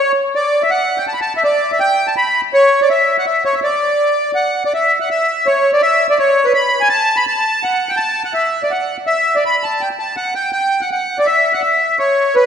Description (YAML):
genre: musette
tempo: 165 BPM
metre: 3/4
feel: straight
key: B minor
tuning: A4 = 440 Hz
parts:
  - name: accordion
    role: solo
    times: 0.0-12.5 s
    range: B4 to B5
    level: -13 LUFS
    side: equal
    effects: light tremolo tuning
room: wet concert hall reverb, RT60 1.9 s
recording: heard from further back in the room, nothing above 10.6 kHz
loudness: -13 LUFS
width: side -8 dB against mid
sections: 0.0-4.7 A section; 4.7-12.5 B section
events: none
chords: none